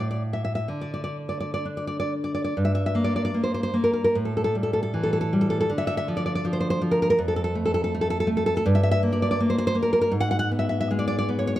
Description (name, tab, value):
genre	romantic piece for solo classical guitar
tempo	62-83 BPM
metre	2/4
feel	rubato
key	unclear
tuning	A4 = 440 Hz
part	nylon-string guitar	solo	0.0-11.6 s	F2 to F#5	-22 LUFS	equal	none
room	light reverb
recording	none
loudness	-22 LUFS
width	side -14 dB against mid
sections	0.0-2.6 A section; 2.6-11.6 B section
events	none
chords	0.0 N.C.; 2.6 Gmadd11; 4.2 A5; 5.7 Dm; 7.2 F; 8.6 Gm; 10.1 G#m7b5